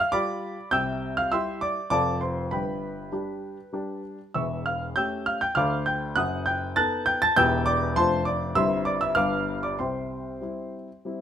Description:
classical-period piano sonatina; 99 BPM; 3/4; straight; C major; A4 = 437 Hz
warm baby grand piano; solo; 0.0-11.2 s; E1 to A6; -24 LUFS; equal
light reverb; minimal, uncompressed stereo recording; -23 LUFS; side -9 dB against mid
0.0-11.2 A section
0.0 G7; 0.7 C; 1.9 F; 2.5 G; 4.3 A7/E; 5.6 Dm; 6.2 B7/F#; 7.4 Em; 8.0 Dm/F; 8.6 C/G; 9.2 G7; 9.8 C

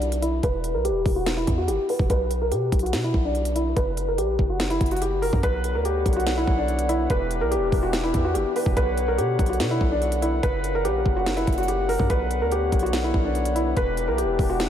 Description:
hip hop, trap; 144 BPM; 4/4; half-time; B harmonic minor; A4 = 440 Hz
felt-muted upright piano; melody; 0.0-14.7 s; D4 to B4; -24 LUFS; equal; low-pass filter, analog delay
warm 808-style bass; bass; 0.0-14.7 s; E1 to B2; -26 LUFS; equal
trap drum kit; drums; 0.0-14.7 s; hi-hat, kick drum, snare drum; -27 LUFS; equal
mellow brass ensemble; sustained chords; 5.4-14.7 s; A#2 to F#5; -29 LUFS; left 2 dB
moderate cathedral reverb, RT60 5.7 s; dreamy mix soaked in reverb; -21 LUFS; side -9 dB against mid
0.0-14.7 A section
filter sweep on felt piano 0.0-5.4
0.4 Em; 2.1 Bsus4; 3.8 N.C.; 5.4 Bmadd9; 7.1 Em7; 8.8 Bmadd9; 10.4 F#; 12.1 Bmadd9; 13.8 Em7

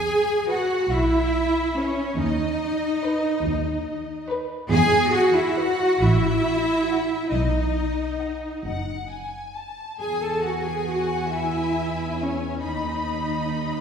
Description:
classical, slow romantic movement for string orchestra; 46 BPM (dotted quarters); 6/8; rubato; E major; A4 = 439 Hz
clear studio violin section; second line; 0.0-13.8 s; C#5 to A5; -30 LUFS; left 4 dB
rich studio viola section; accompaniment; 0.0-13.8 s; C#4 to A4; -26 LUFS; equal
rich studio cello section; bass; 0.0-13.8 s; C#4 to A4; -26 LUFS; right 1 dB
rich studio double bass section; bass; 0.0-13.8 s; F#1 to E2; -26 LUFS; right 1 dB
rich studio violin section; melody; 0.5-13.8 s; B4 to B5; -32 LUFS; left 3 dB
wet scoring stage reverb, RT60 1.6 s; heard from further back in the room; -21 LUFS; side -7 dB against mid
0.0-13.8 A section
0.0 E; 2.2 B/D#; 4.7 E; 6.0 F#m/A; 7.3 B; 10.0 E; 12.6 B/D#

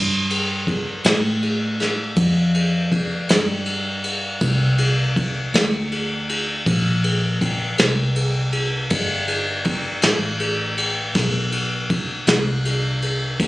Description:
slow blues; 53 BPM (dotted quarters); 12/8; straight; G mixolydian; A4 = 437 Hz
vintage muted fingered electric bass; bass; 0.0-13.5 s; G1 to A2; -22 LUFS; equal
vintage brush drum kit; drums; 0.3-13.5 s; kick drum, ride cymbal, snare drum; -20 LUFS; equal
light reverb; recorded on a phone in the room, club reverb; -18 LUFS; side -19 dB against mid
0.0-13.5 A section

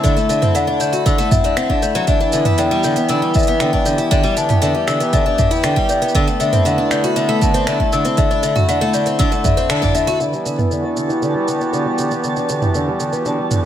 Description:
folktronica; 118 BPM; 4/4; straight; E minor; A4 = 436 Hz
large celesta; second line; 0.0-10.2 s; D5 to E6; -19 LUFS; left 5 dB; ping-pong delay
hand-pumped harmonium; sustained chords; 0.0-13.7 s; D3 to G4; -22 LUFS; right 1 dB
picked twelve-string acoustic guitar; arpeggios; 0.0-13.6 s; D3 to F#4; -20 LUFS; equal; low-pass filter, tape echo
electronic kick drum; drums; 0.0-9.9 s; -18 LUFS; right 1 dB
minimal click drum kit; drums; 0.0-13.6 s; finger snaps, hi-hat, shaker, toms; -22 LUFS; right 2 dB
twinkling granular texture; texture; 10.4-13.7 s; A5; -29 LUFS; right 2 dB; built-in reverb
moderate echo chamber reverb, RT60 1.2 s, small room ambience; -14 LUFS; side -10 dB against mid
0.0-10.2 A section; 10.2-13.7 B section
band accent 9.7; filter sweep on twelve-string acoustic guitar 10.2-13.7
0.0 D7; 2.1 Em7; 6.1 D7; 10.2 Em7

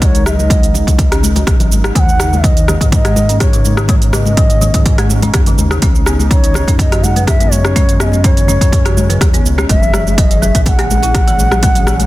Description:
afro house; 124 BPM; 4/4; straight; A4 = 440 Hz
bansuri; melody; 0.0-12.1 s; C#5 to G#5; -19 LUFS; equal; dub echo
warm analog pad; sustained chords; 0.0-12.1 s; C#3 to A#4; -24 LUFS; equal; lush chorus, sidechain pumping
folk marimba with hard mallets; arpeggios; 0.0-12.0 s; C#3 to B4; -21 LUFS; left 1 dB; sidechain pumping, low-pass filter, dub echo
round analog bass; bass; 0.0-12.1 s; F#1 to G#2; -16 LUFS; equal; sidechain pumping
afro-pop drum kit; drums; 0.0-12.1 s; hi-hat, rim click, shaker; -19 LUFS; right 1 dB; studio reverb, soft clipping on snare
electronic kick drum; drums; 0.0-11.7 s; -12 LUFS; equal; overdrive, studio reverb
congas; percussion; 0.0-12.1 s; -22 LUFS; left 3 dB
studio reverb; dense, heavily limited modern master; -9 LUFS; side -17 dB against mid
0.0-12.1 A section
filter sweep on marimba 0.0-12.1
0.0 G#9sus4; 2.0 D#7(no3); 5.8 C#9sus4; 9.7 F#7

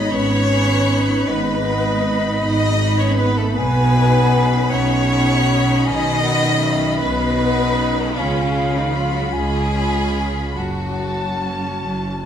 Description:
cinematic, emotional film score for orchestra; 52 BPM (dotted quarters); 6/8; uneven beats, rubato; A4 = 442 Hz
rich studio violin section; melody; 0.0-12.3 s; A5 to B5; -28 LUFS; left 2 dB
mellow hollow silver concert flute; second line; 0.0-12.3 s; B4 to A5; -26 LUFS; left 2 dB
rich chamber violin section; second line; 0.0-11.8 s; C#4 to D#5; -22 LUFS; left 1 dB
warm chamber viola section; accompaniment; 0.0-12.3 s; D#3 to F#4; -26 LUFS; right 3 dB
mellow French horn section; sustained chords; 0.0-11.8 s; C#3 to D#4; -23 LUFS; left 3 dB
clear symphonic double bass section; bass; 0.1-12.3 s; F#1 to C#2; -24 LUFS; right 2 dB
rich symphonic cello section; bass; 0.1-12.3 s; F#2 to C#3; -22 LUFS; right 2 dB
moderate scoring stage reverb, RT60 1.8 s; -16 LUFS; side -9 dB against mid
0.0-12.3 A section
0.0 G#m; 3.6 Badd9; 8.2 C#7; 10.6 F#m

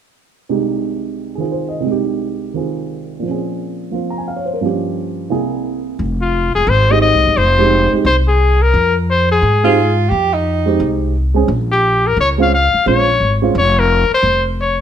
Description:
jazz, small-group swing and bop; 175 BPM; 4/4; swing 63% on 8ths; F minor; A4 = 440 Hz
dark baby grand piano; accompaniment; 0.5-13.5 s; C2 to Bb5; -18 LUFS; right 5 dB
upright bass; bass; 6.0-14.8 s; E1 to Ab2; -16 LUFS; equal
clear trumpet; melody; 6.2-14.8 s; F4 to F5; -14 LUFS; left 3 dB
warm alto saxophone; second line; 9.6-11.0 s; Eb4 to G4; -17 LUFS; right 4 dB
light reverb; -13 LUFS; side -9 dB against mid
0.5-6.0 A section; 6.0-14.8 B section
0.5 Fm7/C; 3.2 Bbm7; 4.6 Gm7b5; 5.3 C7b13; 6.0 Fm9; 11.5 Bbm9; 14.2 F5

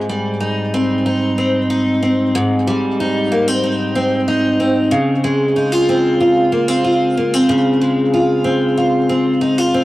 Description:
indie pop; 93 BPM; 4/4; straight; Ab major; A4 = 439 Hz
picked steel-string acoustic guitar; solo; 0.0-9.8 s; Ab2 to F4; -13 LUFS; equal; lush chorus, vibrato effect, cassette tape, tape echo
moderate spring reverb, RT60 1.4 s, studio reverb; home recording on cassette; -13 LUFS; side -16 dB against mid
0.0-9.8 A section
0.0 Abmaj7; 4.9 Dbmaj7

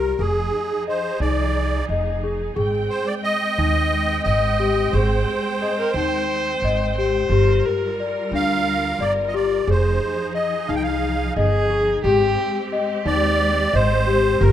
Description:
contemporary instrumental, chamber music in an uneven meter; 177 BPM (eighths); 7/8; straight; A4 = 440 Hz
musette accordion; melody; 0.0-14.5 s; Ab4 to G5; -23 LUFS; right 3 dB
bright studio string section; sustained chords; 0.0-14.5 s; F3 to G5; -28 LUFS; right 1 dB
large celesta; arpeggios; 0.0-14.5 s; D4 to Eb5; -23 LUFS; left 6 dB
upright bass; bass; 0.0-14.5 s; F1 to Eb2; -22 LUFS; right 2 dB
warm viola; second line; 5.6-12.9 s; G4 to C5; -24 LUFS; right 1 dB
light reverb; close, detailed microphones; -18 LUFS; side -11 dB against mid
0.0-14.5 A section
0.2 Fm7; 2.6 Abmaj7; 7.3 Gm7; 9.7 Fm7; 12.0 Abmaj7

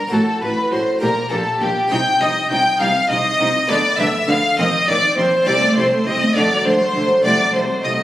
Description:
classical, baroque-style concerto movement with solo episodes; 67 BPM (dotted quarters); 6/8; straight; A4 = 440 Hz
rich violin; melody; 0.0-8.0 s; G4 to G5; -19 LUFS; equal
warm studio violin section; melody; 0.0-7.9 s; G5 to G6; -26 LUFS; left 1 dB
warm chamber violin section; second line; 0.0-8.0 s; G4 to G5; -20 LUFS; equal
harpsichord; accompaniment; 0.0-8.0 s; A2 to C5; -28 LUFS; left 1 dB
rich symphonic viola section; accompaniment; 0.1-8.0 s; F#3 to G4; -25 LUFS; right 1 dB
rich studio cello section; bass; 0.1-7.9 s; A2 to Eb3; -24 LUFS; right 1 dB
warm chamber double bass section; bass; 0.1-7.9 s; A1 to Eb2; -27 LUFS; right 1 dB
wet recital hall reverb, RT60 1.6 s; recorded on a phone in the room, club reverb; -14 LUFS; side -14 dB against mid
0.0-8.0 A section
0.1 F#dim/A; 1.0 Gm/Bb; 1.9 Cm; 3.7 Bdim/D; 4.6 Cm/Eb; 5.5 Adim/C; 6.4 D; 7.3 D7/C

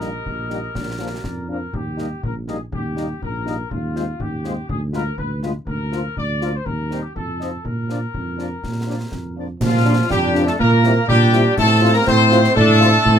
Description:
military-style march for wind band; 122 BPM; 2/4; straight; Eb major, Bb major from 5.7 s; A4 = 437 Hz
dark trumpet section; melody; 0.0-13.2 s; F4 to D5; -23 LUFS; left 2 dB
warm woodwind section; second line; 0.0-13.2 s; F4 to Eb5; -26 LUFS; left 2 dB
warm French horn section; accompaniment; 0.0-12.9 s; F3 to F4; -24 LUFS; left 3 dB
dark tuba; bass; 0.0-13.2 s; Bb1 to Bb2; -20 LUFS; right 2 dB
concert snare drum, concert bass drum and clash cymbals; drums; 0.0-13.2 s; -28 LUFS; left 1 dB
clear euphonium; second line; 9.6-13.2 s; F3 to C4; -22 LUFS; right 4 dB
wooden piccolo; second line; 9.6-13.2 s; F5 to C6; -25 LUFS; left 3 dB
warm trombone section; sustained chords; 10.1-13.2 s; A3 to D4; -24 LUFS; left 4 dB
light reverb; close, detailed microphones; -17 LUFS; side -8 dB against mid
0.0-9.6 A section; 9.6-13.2 B section
0.0 Eb/Bb; 0.7 Bb; 1.7 Eb; 3.7 Fm7/Eb; 4.7 Ddim7; 5.7 Bb/D; 6.7 Cm7/Eb; 7.2 F7; 7.6 Bb; 10.6 C7/Bb; 11.6 F/A

